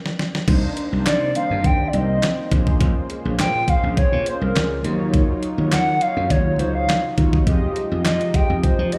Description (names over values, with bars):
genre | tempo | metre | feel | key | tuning
early-eighties boogie funk | 103 BPM | 4/4 | straight | C phrygian | A4 = 440 Hz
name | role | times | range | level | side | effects
crisp 8-bit digital drum machine | drums | 0.1-9.0 s | crash cymbal, handclaps, hi-hat, kick drum, snare drum | -23 LUFS | equal | overdrive
mellow synth brass | accompaniment | 0.5-9.0 s | Gb3 to Eb5 | -29 LUFS | equal | chorus, slapback echo
lush unison pad | sustained chords | 0.5-9.0 s | C3 to C5 | -34 LUFS | equal | chorus
slap bass | bass | 0.5-8.9 s | Bb1 to F3 | -24 LUFS | equal | none
hollow clarinet-like synth lead | melody | 1.1-9.0 s | Bb4 to G5 | -25 LUFS | equal | chorus, slapback echo, analog delay
room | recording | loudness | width
digital ambience | live gig heard through the venue's PA, club reverb | -20 LUFS | mono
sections
0.5-9.0 A section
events
drum fill 0.0-0.5; stop 0.0-0.5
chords
0.5 Cm9; 2.5 Bbm9; 4.8 Ebm9; 7.5 Fm9